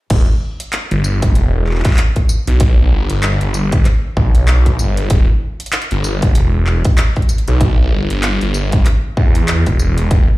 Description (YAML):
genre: glitch hop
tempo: 96 BPM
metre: 4/4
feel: swing 59% on 16ths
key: E minor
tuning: A4 = 440 Hz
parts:
  - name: phased detuned saw bass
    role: bass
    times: 0.1-10.3 s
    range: E1 to E2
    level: -14 LUFS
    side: equal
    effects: phaser, tube saturation
  - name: dubstep drum kit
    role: drums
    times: 0.1-10.3 s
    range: crash cymbal, handclaps, hi-hat, rim click, tambourine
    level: -23 LUFS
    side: equal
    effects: none
  - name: electronic kick drum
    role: drums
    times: 0.1-10.3 s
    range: none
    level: -13 LUFS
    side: equal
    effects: none
room: little or no reverb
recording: played on a big sound system in a bare room, large studio reverb, high-pass filter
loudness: -12 LUFS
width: side -19 dB against mid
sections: 0.1-10.4 A section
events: drop 0.1-10.4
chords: none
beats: | 0.11 0.73 1.36 1.98 | 2.61 3.23 3.86 4.48 | 5.11 5.73 6.36 6.98 | 7.61 8.23 8.86 9.48 | 10.11